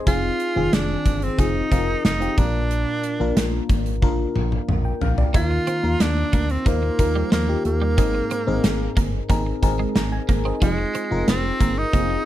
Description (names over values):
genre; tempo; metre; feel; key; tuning
1980s-style pop; 91 BPM; 4/4; straight; Eb major; A4 = 442 Hz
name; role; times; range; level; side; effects
FM electric piano; accompaniment; 0.0-12.3 s; Ab2 to Bb5; -26 LUFS; left 3 dB; chorus, phaser
clear tenor saxophone; melody; 0.1-12.3 s; Ab3 to F4; -25 LUFS; right 2 dB; slapback echo
solid FM bass; bass; 0.1-12.2 s; F1 to Eb2; -24 LUFS; equal; none
gated 80s drum kit; drums; 0.1-12.1 s; hi-hat, kick drum, snare drum, toms; -22 LUFS; equal; none
twelve-string electric guitar; riff; 5.3-12.1 s; F3 to Eb4; -29 LUFS; right 6 dB; analog chorus, slapback echo
room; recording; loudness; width
little or no reverb; none; -19 LUFS; side -13 dB against mid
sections
0.0-12.3 A section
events
drum fill 4.0-5.3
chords
0.1 Fm7; 2.4 Bb; 5.3 Ebsus2; 8.0 Abadd9; 10.6 Fm7